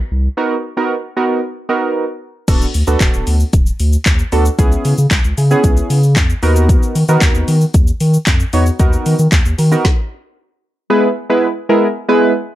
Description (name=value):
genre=dance-pop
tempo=114 BPM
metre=4/4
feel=straight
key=unclear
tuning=A4 = 444 Hz
part: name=saturated sub bass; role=bass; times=0.0-9.8 s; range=D1 to D#3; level=-13 LUFS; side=equal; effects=sidechain pumping
part: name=warm analog keys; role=accompaniment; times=0.4-12.3 s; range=G#3 to C#5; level=-15 LUFS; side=right 1 dB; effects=chorus, sidechain pumping
part: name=deep house drum kit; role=drums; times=2.5-10.0 s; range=crash cymbal, handclaps, hi-hat, kick drum, shaker, snare drum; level=-14 LUFS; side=equal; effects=none
room=little or no reverb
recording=dark, warm production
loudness=-11 LUFS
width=side -14 dB against mid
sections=0.0-2.5 A section; 2.5-10.9 B section; 10.9-12.6 C section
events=stop 9.8-10.9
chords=0.0 Bmaj7; 2.5 D6; 4.6 C#m7; 6.4 Bmaj7/D#; 10.9 E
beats=| 0.38 0.90 1.43 1.96 | 2.48 3.01 3.53 4.06 | 4.59 5.11 5.64 6.17 | 6.69 7.22 7.74 8.27 | 8.80 9.32 9.85 10.38 | 10.90 11.43 11.96